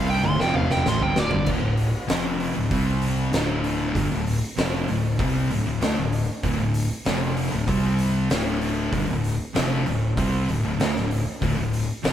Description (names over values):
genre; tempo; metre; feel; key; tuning
stoner and doom metal; 96 BPM; 4/4; straight; D minor; A4 = 440 Hz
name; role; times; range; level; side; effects
fuzz lead guitar; melody; 0.0-1.5 s; D5 to C6; -25 LUFS; right 2 dB; wah, distortion
thick fuzz guitar; riff; 0.0-12.1 s; D2 to C4; -25 LUFS; left 3 dB; distortion
thick fuzz guitar; riff; 0.0-12.1 s; D2 to C4; -28 LUFS; right 5 dB; distortion
fuzz fingered electric bass; bass; 0.0-12.1 s; D1 to D2; -29 LUFS; right 1 dB; overdrive
oversized low-tuned drum kit; drums; 0.2-12.1 s; crash cymbal, hi-hat, kick drum, snare drum, toms; -27 LUFS; equal; none
room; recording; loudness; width
moderate studio ambience, RT60 0.5 s; band playing live in one room; -21 LUFS; side -10 dB against mid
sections
0.0-1.5 A section; 1.5-12.1 B section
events
lead electric guitar solo 0.0-1.5; drum fill 0.2-1.5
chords
0.0 Dm; 2.7 C5; 3.3 Dm; 7.7 C5; 8.3 Dm